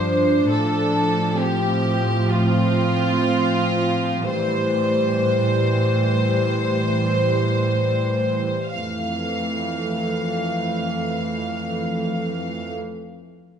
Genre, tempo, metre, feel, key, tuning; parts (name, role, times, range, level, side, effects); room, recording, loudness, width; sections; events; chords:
cinematic; free time; F major; A4 = 440 Hz
clear studio violin section; second line; 0.0-12.7 s; F4 to F5; -23 LUFS; left 1 dB
dark studio viola section; accompaniment; 0.0-12.7 s; E3 to D4; -24 LUFS; right 2 dB
dark studio cello section; bass; 0.0-12.7 s; F2 to A2; -24 LUFS; equal
moderate scoring stage reverb, RT60 1.7 s; nothing above 10.3 kHz; -19 LUFS; side -8 dB against mid
0.0-8.8 A section; 8.8-13.6 B section
slowing down 0.0-8.8
0.0 G7sus4; 0.5 F/A; 4.3 Am7; 8.8 Fmaj7